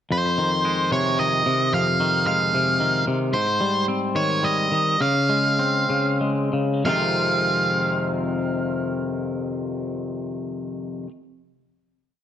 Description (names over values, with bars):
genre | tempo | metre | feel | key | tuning
post-rock | 89-112 BPM | 3/4 | straight | F minor | A4 = 441 Hz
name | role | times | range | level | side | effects
octave-fuzz lead guitar | melody | 0.1-11.0 s | C5 to F5 | -22 LUFS | right 2 dB | distortion, slapback echo
twangy electric guitar | arpeggios | 0.1-11.1 s | F2 to F4 | -23 LUFS | left 2 dB | slapback echo
room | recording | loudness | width
moderate large studio reverb, RT60 1.3 s | dark, warm production | -20 LUFS | side -10 dB against mid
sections
0.1-6.9 A section; 6.9-10.9 final chord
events
slowing down 3.4-6.9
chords
0.1 Fm7; 3.4 Abmaj7; 5.0 Dbmaj7; 6.9 Fm7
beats
| 0.12 0.66 1.20 | 1.74 2.27 2.81 | 3.35 3.89 4.44 | 5.01 5.59 6.21 | 6.86 7.53 8.20 | 8.87 9.54 10.21